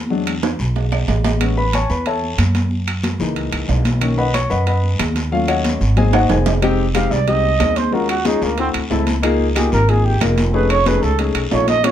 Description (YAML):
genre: Afro-Cuban jazz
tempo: 184 BPM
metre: 4/4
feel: straight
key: F minor from 6.6 s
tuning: A4 = 440 Hz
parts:
  - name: upright bass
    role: bass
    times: 0.0-11.9 s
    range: E#1 to F#2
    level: -19 LUFS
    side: right 1 dB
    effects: none
  - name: warm concert grand piano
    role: accompaniment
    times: 0.1-11.9 s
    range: D#3 to C#6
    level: -19 LUFS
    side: left 4 dB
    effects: none
  - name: congas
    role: percussion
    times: 0.1-11.9 s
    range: none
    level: -25 LUFS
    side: left 1 dB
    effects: none
  - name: guiro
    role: percussion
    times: 0.1-11.9 s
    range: none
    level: -32 LUFS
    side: left 2 dB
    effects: none
  - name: claves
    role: percussion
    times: 0.3-11.9 s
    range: none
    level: -32 LUFS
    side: left 3 dB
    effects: none
  - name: timbales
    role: percussion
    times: 0.3-11.9 s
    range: none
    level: -24 LUFS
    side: right 7 dB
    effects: none
  - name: breathy trumpet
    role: melody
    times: 7.0-11.9 s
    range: Bb3 to F5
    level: -18 LUFS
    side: right 4 dB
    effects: none
room: light reverb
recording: none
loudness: -15 LUFS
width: side -10 dB against mid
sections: 0.0-6.6 A section; 6.6-11.9 A section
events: grand piano solo 0.0-6.6; drum fill 0.4-1.4, 6.0-6.6; trumpet solo 6.6-11.9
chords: 0.1 E7; 1.4 Amaj7; 2.7 F#13; 4.0 Bmaj7; 5.3 D#m7b5; 6.0 G#7; 6.6 Fm9; 7.9 Ebm11; 8.6 D9; 9.2 Db6; 10.5 F7alt